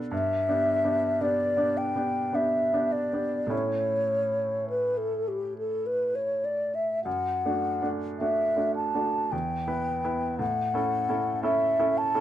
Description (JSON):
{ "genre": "classical, romantic duo for flute and grand piano", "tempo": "50-57 BPM", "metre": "3/4", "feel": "rubato", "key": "unclear", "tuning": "A4 = 439 Hz", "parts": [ { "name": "bright baby grand piano", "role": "accompaniment", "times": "0.0-12.2 s", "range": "E2 to B4", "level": "-30 LUFS", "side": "right 2 dB", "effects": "none" }, { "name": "mellow hollow concert flute", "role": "melody", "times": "0.1-12.2 s", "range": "G4 to A5", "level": "-26 LUFS", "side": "left 1 dB", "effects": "none" } ], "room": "light reverb", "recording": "dark, warm production", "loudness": "-25 LUFS", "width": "side -12 dB against mid", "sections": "0.0-12.2 A section", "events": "none", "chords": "0.1 Em7/G; 3.5 A; 7.1 D/F#; 9.3 Em; 10.4 A" }